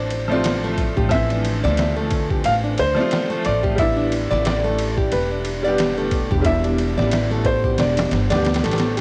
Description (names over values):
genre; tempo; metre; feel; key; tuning
trip hop; 90 BPM; 4/4; swing 58% on 16ths; D dorian; A4 = 440 Hz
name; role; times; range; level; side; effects
felt-muted upright piano; melody; 0.0-8.7 s; B4 to F5; -27 LUFS; equal; cassette tape, tape echo
bright upright piano; accompaniment; 0.0-9.0 s; B2 to G4; -26 LUFS; equal; tremolo, cassette tape
nylon-string guitar; arpeggios; 0.0-9.0 s; A3 to D5; -28 LUFS; equal; cassette tape, tape echo
upright bass; bass; 0.0-9.0 s; E1 to D2; -26 LUFS; equal; none
backwards swelling texture; texture; 0.0-9.0 s; D4; -41 LUFS; equal; none
trip hop sampler-style drum kit; drums; 0.1-9.0 s; kick drum, ride cymbal, snare drum; -27 LUFS; equal; vintage 12-bit sampler grit, studio ambience, cassette tape
room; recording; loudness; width
little or no reverb; home recording on cassette; -20 LUFS; mono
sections
0.0-9.0 A section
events
none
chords
0.0 Dm7; 3.8 A9sus4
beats
0.45 | 1.11 1.78 2.45 3.12 | 3.78 4.45 5.12 5.78 | 6.45 7.12 7.78 8.45